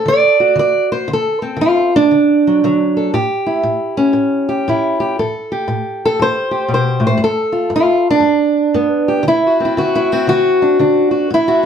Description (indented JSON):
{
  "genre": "acoustic country blues, solo or duo",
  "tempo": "118 BPM",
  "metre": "4/4",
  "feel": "swing 65% on 8ths",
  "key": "D mixolydian",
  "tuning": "A4 = 440 Hz",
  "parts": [
    { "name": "fingerpicked old ladder-braced acoustic guitar", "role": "solo", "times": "0.0-11.7 s", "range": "G2 to D5", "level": "-12 LUFS", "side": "equal", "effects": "none" }
  ],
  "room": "wet studio reverb, RT60 0.6 s",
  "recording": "heard from further back in the room",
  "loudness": "-12 LUFS",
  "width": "side -8 dB against mid",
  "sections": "0.0-11.7 A section",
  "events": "none",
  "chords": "0.0 D7; 3.1 A7; 7.2 G7; 9.3 D7"
}